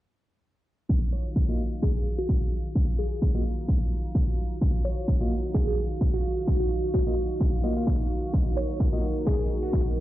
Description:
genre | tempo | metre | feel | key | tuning
bass house | 129 BPM | 4/4 | swing 55% on 16ths | Eb minor | A4 = 440 Hz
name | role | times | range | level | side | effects
dark analog pad | sustained chords | 1.1-10.0 s | Eb4 to F5 | -34 LUFS | right 2 dB | chorus, sidechain pumping
electronic kick drum | drums | 0.9-9.8 s | none | -24 LUFS | equal | studio reverb
warbly tape-like pad | texture | 2.2-10.0 s | Eb4 to Db6 | -46 LUFS | left 4 dB | none
glassy wavetable pluck | melody | 1.1-10.0 s | Gb4 to Db5 | -33 LUFS | equal | chorus, tape echo
electronic hi-hat | drums | 1.1-10.0 s | none | -62 LUFS | left 3 dB | none
percussive organ stab | stabs | 1.5-9.1 s | Bb3 to F5 | -34 LUFS | equal | chorus, sidechain pumping, tape echo
room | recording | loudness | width
little or no reverb | played on a big sound system in a bare room, stone room reverb, low-pass filter | -24 LUFS | side -15 dB against mid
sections
0.9-10.0 A section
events
filter sweep on synth stab 0.9-10.0; filter sweep 0.9-10.0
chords
0.9 Ebmadd9

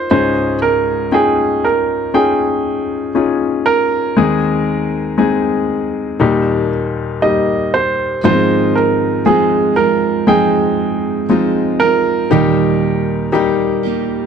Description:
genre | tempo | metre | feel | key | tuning
pop ballad | 59 BPM | 4/4 | straight | Ab major | A4 = 440 Hz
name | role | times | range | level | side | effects
clear baby grand piano | melody | 0.0-14.3 s | Ab4 to Eb5 | -16 LUFS | right 4 dB | slapback echo
clear baby grand piano | accompaniment | 0.0-14.3 s | Db2 to G5 | -15 LUFS | left 4 dB | none
picked steel-string acoustic guitar | arpeggios | 8.2-14.3 s | Ab2 to G4 | -18 LUFS | right 16 dB | none
room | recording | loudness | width
light reverb | dry, close 1970s-style studio recording | -13 LUFS | side -7 dB against mid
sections
0.0-14.3 A section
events
none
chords
0.1 Dbadd9; 4.2 Ab/Eb; 6.2 Eb; 8.2 Ab6; 12.3 Eb

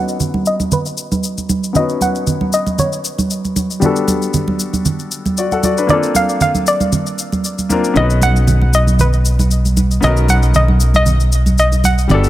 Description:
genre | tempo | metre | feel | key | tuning
amapiano | 116 BPM | 4/4 | swing 55% on 16ths | B major | A4 = 440 Hz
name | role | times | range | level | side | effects
hollow square pluck | melody | 0.0-12.3 s | B4 to F#5 | -18 LUFS | equal | chorus, low-pass filter, tape echo
bright grand piano | accompaniment | 0.0-12.3 s | G3 to F#5 | -21 LUFS | left 4 dB | low-pass filter
shaker | drums | 0.1-12.3 s | none | -24 LUFS | left 5 dB | none
congas | percussion | 0.2-12.2 s | none | -18 LUFS | right 3 dB | none
fingered electric bass | bass | 8.0-12.3 s | G1 to B1 | -12 LUFS | equal | none
room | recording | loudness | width
digital ambience | none | -12 LUFS | side -14 dB against mid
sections
0.0-12.3 A section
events
filter sweep 0.0-12.3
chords
0.0 Badd9; 3.8 Gmaj9; 5.9 A#maj9; 8.0 Bmaj9

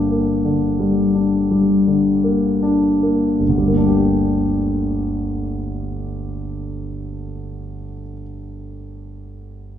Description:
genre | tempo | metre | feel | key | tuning
classical | 37-44 BPM | 4/4 | rubato | G minor | A4 = 440 Hz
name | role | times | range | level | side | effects
dark concert grand piano | accompaniment | 0.0-9.8 s | G1 to G5 | -17 LUFS | left 1 dB | none
room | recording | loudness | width
wet recital hall reverb, RT60 1.5 s | heard from further back in the room | -16 LUFS | side -10 dB against mid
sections
0.0-3.4 A section; 3.4-9.1 B section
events
slowing down 0.0-3.4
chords
0.0 Gm

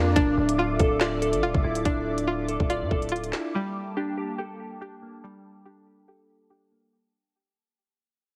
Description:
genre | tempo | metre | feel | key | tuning
hip hop, drill | 142 BPM | 4/4 | half-time | D minor | A4 = 440 Hz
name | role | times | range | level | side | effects
glassy digital keys | accompaniment | 0.0-6.9 s | G3 to Bb5 | -31 LUFS | equal | chorus, low-pass filter
airy breathy pad | sustained chords | 0.0-6.9 s | Bb3 to D6 | -36 LUFS | equal | chorus, low-pass filter
string-like resonator pluck | arpeggios | 0.0-6.9 s | G3 to G4 | -33 LUFS | equal | chorus, low-pass filter, delay
distorted 808-style bass | bass | 0.0-3.3 s | D1 to A2 | -32 LUFS | equal | distortion
drill drum kit | drums | 0.2-3.4 s | handclaps, hi-hat, kick drum, snare drum | -29 LUFS | equal | none
room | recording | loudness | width
light reverb | heavily compressed radio sound, multiband compression | -26 LUFS | mono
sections
0.2-6.9 A section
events
fade-out 0.2-6.9; filter sweep 0.2-6.9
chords
0.2 Dmadd9; 3.5 Gmadd9

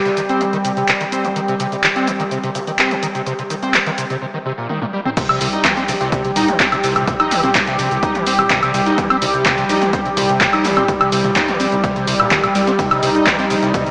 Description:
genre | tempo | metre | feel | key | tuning
acid house | 126 BPM | 4/4 | straight | C minor pentatonic | A4 = 442 Hz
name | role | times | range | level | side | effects
warm analog pad | sustained chords | 0.0-13.9 s | G3 to G4 | -22 LUFS | equal | chorus, sidechain pumping
overdriven acid bass | riff | 0.1-13.9 s | Bb2 to Eb4 | -23 LUFS | equal | ensemble chorus, sidechain pumping, analog delay
breakbeat sampler-style drum kit | drums | 0.1-13.9 s | ride cymbal, snare drum | -32 LUFS | equal | none
punchy analog drum machine | drums | 0.1-13.9 s | cabasa, crash cymbal, handclaps, hi-hat, ride cymbal, toms, woodblock | -21 LUFS | equal | overdrive
electronic kick drum | drums | 5.2-13.8 s | none | -25 LUFS | equal | none
saturated sub bass | bass | 5.4-13.8 s | Bb1 to C2 | -30 LUFS | equal | sidechain pumping
room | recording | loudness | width
wet lush hall reverb, RT60 2.3 s | dreamy mix soaked in reverb, small speaker sound | -17 LUFS | mono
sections
0.0-5.2 A section; 5.2-13.9 B section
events
break 4.2-5.2; drum fill 4.7-5.2; drop 5.2-13.9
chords
0.0 C5; 5.2 Cm

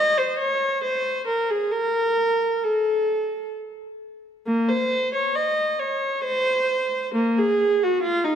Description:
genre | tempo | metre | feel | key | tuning
classical, baroque-style suite movement for unaccompanied viola | 67 BPM | 3/4 | rubato | unclear | A4 = 436 Hz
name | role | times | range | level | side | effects
warm viola | solo | 0.0-8.4 s | Bb3 to Eb5 | -20 LUFS | equal | none
room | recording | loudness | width
moderate concert hall reverb, RT60 2.3 s | none | -20 LUFS | side -8 dB against mid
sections
0.0-8.4 A section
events
none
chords
none

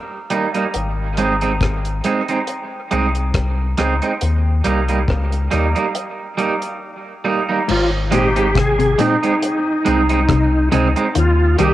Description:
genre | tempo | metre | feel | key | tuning
dub reggae | 69 BPM | 4/4 | swing 55% on 16ths | Ab major | A4 = 439 Hz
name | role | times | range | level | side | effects
electric guitar at the edge of break-up | accompaniment | 0.3-11.7 s | G3 to Eb4 | -19 LUFS | right 4 dB | cassette tape, dub echo
deep reggae drum kit | drums | 0.3-11.7 s | crash cymbal, hi-hat, kick drum, rim click | -23 LUFS | left 1 dB | none
warm sub bass | bass | 0.8-11.7 s | Ab1 to Eb2 | -18 LUFS | left 1 dB | none
bright tonewheel organ | melody | 7.7-11.7 s | Eb4 to Ab4 | -18 LUFS | equal | overdrive, chorus vibrato, slow rotary speaker, dub echo
semi-hollow electric guitar | arpeggios | 7.7-11.7 s | Ab2 to Eb3 | -22 LUFS | left 6 dB | cassette tape
room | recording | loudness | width
moderate spring reverb, RT60 2.5 s | home recording on cassette | -15 LUFS | side -14 dB against mid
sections
0.0-7.7 A section; 7.7-11.7 B section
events
none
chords
0.0 Eb; 0.7 Ab; 4.2 Eb; 7.7 Ab; 11.2 Eb

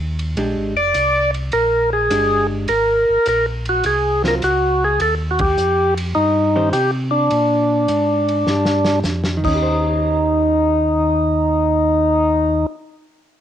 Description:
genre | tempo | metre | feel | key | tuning
soul jazz organ trio | 104 BPM | 4/4 | swing 69% on 8ths | unclear | A4 = 440 Hz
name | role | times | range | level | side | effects
mellow tonewheel organ | bass | 0.0-12.7 s | F1 to C3 | -22 LUFS | equal | chorus vibrato, slow rotary speaker
warm soul drum kit | drums | 0.2-9.5 s | crash cymbal, hi-hat, kick drum, ride cymbal, snare drum | -28 LUFS | equal | cassette tape
vintage hollow-body jazz guitar | accompaniment | 0.4-12.9 s | Eb3 to C5 | -25 LUFS | right 1 dB | cassette tape, plate reverb
percussive tonewheel organ | melody | 0.8-12.7 s | D4 to D5 | -16 LUFS | equal | slow rotary speaker, cassette tape, plate reverb
room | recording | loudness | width
moderate studio reverb, RT60 0.5 s | home recording on cassette | -15 LUFS | side -10 dB against mid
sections
0.0-9.6 A section; 9.6-11.9 B section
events
band accent 5.3; drum fill 8.5-9.6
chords
0.4 Bb13; 2.7 Ab9; 5.0 Eb69; 7.3 Bb6; 9.3 Eb; 9.6 Eb6

